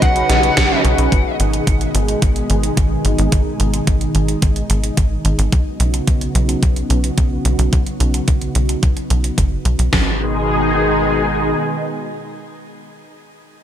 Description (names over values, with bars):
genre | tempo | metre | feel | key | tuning
synthwave | 109 BPM | 4/4 | straight | G# minor | A4 = 440 Hz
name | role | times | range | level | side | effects
fuzz lead guitar | melody | 0.0-0.8 s | F#5 | -21 LUFS | left 1 dB | distortion, slapback echo, ping-pong delay, shimmer reverb
analog string pad | sustained chords | 0.0-12.9 s | B2 to G#4 | -20 LUFS | equal | ensemble chorus, sidechain pumping, shimmer reverb
mellow synth brass | stabs | 0.0-1.1 s | C#4 to B4 | -24 LUFS | equal | chorus, vintage 12-bit sampler grit, slapback echo, ping-pong delay, shimmer reverb
tight sequencer bass | bass | 0.0-11.5 s | F#1 to B1 | -18 LUFS | equal | none
gated 80s digital drum machine | drums | 0.0-10.1 s | hi-hat, kick drum, snare drum | -16 LUFS | equal | gated reverb, gated reverb snare, overdrive
gated 80s digital drum machine | drums | 0.0-9.9 s | hi-hat, snare drum | -22 LUFS | right 2 dB | gated reverb, gated reverb snare, overdrive
room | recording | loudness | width
moderate lush hall reverb, RT60 1.9 s | big arena sound | -14 LUFS | side -10 dB against mid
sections
0.0-9.9 A section; 9.9-12.1 B section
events
filter sweep on analog synth pad 0.0-9.9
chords
0.0 Badd9; 1.1 G#m; 5.5 Badd9; 9.9 G#m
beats
0.02 0.57 | 1.12 1.67 2.22 2.77 | 3.32 3.87 4.42 4.97 | 5.52 6.08 6.62 7.18 | 7.73 8.28 8.83 9.38 | 9.93 10.48 11.03 11.58